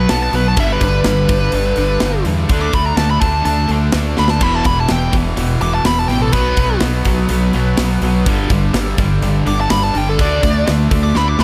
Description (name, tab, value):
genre	hard rock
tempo	125 BPM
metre	4/4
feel	straight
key	unclear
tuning	A4 = 441 Hz
part	bluesy overdriven lead guitar	melody	0.0-11.4 s	A4 to D6	-21 LUFS	equal	distortion, analog delay
part	phased analog pad	sustained chords	0.0-11.4 s	E3 to E5	-32 LUFS	equal	none
part	distorted electric guitar	riff	0.0-11.4 s	E2 to D4	-24 LUFS	equal	distortion
part	high-gain distorted guitar	riff	0.0-11.4 s	E2 to D4	-25 LUFS	equal	distortion
part	tight distorted guitar	riff	0.0-11.4 s	E2 to D4	-24 LUFS	equal	none
part	growling fingered electric bass	bass	0.0-11.4 s	E1 to E2	-21 LUFS	equal	overdrive
part	tight metal drum kit	drums	0.1-11.4 s	crash cymbal, hi-hat, kick drum, snare drum	-22 LUFS	equal	none
room	small room reverb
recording	none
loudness	-15 LUFS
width	mono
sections	0.0-11.4 A section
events	lead electric guitar solo 0.0-11.4; drum fill 4.2, 11.2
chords	0.0 B5; 0.6 G; 2.5 D5; 4.4 E5; 6.3 B5; 8.3 G5; 10.2 D5